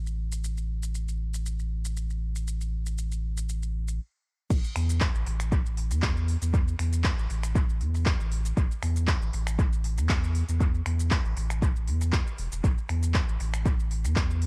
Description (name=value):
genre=deep house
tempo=118 BPM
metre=4/4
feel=straight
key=unclear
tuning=A4 = 440 Hz
part: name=warm sub bass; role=bass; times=0.0-14.5 s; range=E1 to E2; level=-30 LUFS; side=equal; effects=sidechain pumping
part: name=deep house drum kit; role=drums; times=0.1-14.5 s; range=crash cymbal, finger snaps, handclaps, hi-hat, shaker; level=-37 LUFS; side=equal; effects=dub echo
part: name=electronic kick drum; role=drums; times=4.5-14.3 s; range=none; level=-28 LUFS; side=equal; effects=none
room=little or no reverb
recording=echo-heavy mix, cassette tape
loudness=-28 LUFS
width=mono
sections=0.0-4.5 A section; 4.5-14.5 B section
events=stop 4.0-4.5; drop 4.5-14.5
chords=none